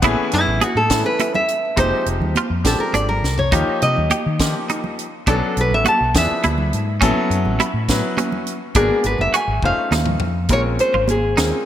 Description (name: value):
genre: electric jazz fusion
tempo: 69 BPM (dotted quarters)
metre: 6/8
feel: straight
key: unclear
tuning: A4 = 440 Hz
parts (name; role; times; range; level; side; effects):
- bright concert grand piano; accompaniment; 0.0-11.7 s; E3 to C5; -23 LUFS; left 2 dB; none
- clean electric guitar; stabs; 0.0-11.5 s; C#4 to G#4; -25 LUFS; right 3 dB; ensemble chorus
- mellow fretless electric bass; bass; 0.0-11.5 s; F1 to D#3; -21 LUFS; equal; ensemble chorus
- tight funk drum kit; drums; 0.0-11.5 s; hi-hat, kick drum, snare drum, toms; -22 LUFS; equal; gated reverb
- congas; percussion; 0.0-11.4 s; none; -27 LUFS; right 4 dB; none
- nylon-string guitar; melody; 0.3-11.6 s; E4 to A5; -20 LUFS; equal; none
room: moderate plate reverb, RT60 3.1 s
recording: bright 1980s-style digital production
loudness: -16 LUFS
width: side -11 dB against mid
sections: 0.0-10.5 A section; 10.5-11.7 B section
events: nylon-string guitar solo 0.0-10.5; drum fill 3.2, 9.6-10.5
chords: 0.0 Amaj9; 1.8 Fm7; 2.6 A#13; 3.5 D#add9; 5.3 Bm7; 6.1 E7b9; 7.0 A6; 8.8 G#m7b5; 9.6 F7b13; 10.5 Bbm9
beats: | 0.03 0.90 | 1.77 2.65 | 3.52 4.39 | 5.27 6.14 | 7.01 7.89 | 8.76 9.63 | 10.51 11.38